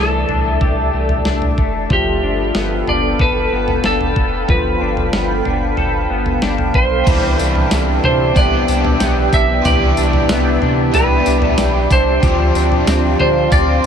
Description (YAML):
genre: dream pop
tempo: 93 BPM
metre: 4/4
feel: straight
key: C major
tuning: A4 = 440 Hz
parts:
  - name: clean lap steel guitar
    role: melody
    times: 0.0-13.9 s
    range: G4 to E5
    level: -20 LUFS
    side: right 2 dB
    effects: digital delay
  - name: shimmering ambient pad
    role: sustained chords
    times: 0.0-13.9 s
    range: G4 to C6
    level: -21 LUFS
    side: equal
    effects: chorus, built-in reverb, phaser
  - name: electric guitar at the edge of break-up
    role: arpeggios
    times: 0.0-13.9 s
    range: E3 to A4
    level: -20 LUFS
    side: left 5 dB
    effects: analog chorus, digital delay
  - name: warm sub bass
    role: bass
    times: 0.0-13.9 s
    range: F1 to D3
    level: -19 LUFS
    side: equal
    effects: none
  - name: dusty soul sampler-style drum kit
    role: drums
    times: 0.3-13.7 s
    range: crash cymbal, kick drum, snare drum, tambourine, toms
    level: -19 LUFS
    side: right 1 dB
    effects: none
  - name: overdriven electric guitar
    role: accompaniment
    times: 7.0-13.9 s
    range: C3 to G4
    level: -22 LUFS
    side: right 2 dB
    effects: harmonic tremolo, lush chorus
room: moderate huge ambient reverb, RT60 4.2 s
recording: none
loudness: -13 LUFS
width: side -8 dB against mid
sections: 0.0-7.1 A section; 7.1-13.9 B section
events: none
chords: 0.0 C69; 1.9 G9; 7.1 Cmaj9; 12.2 G7sus4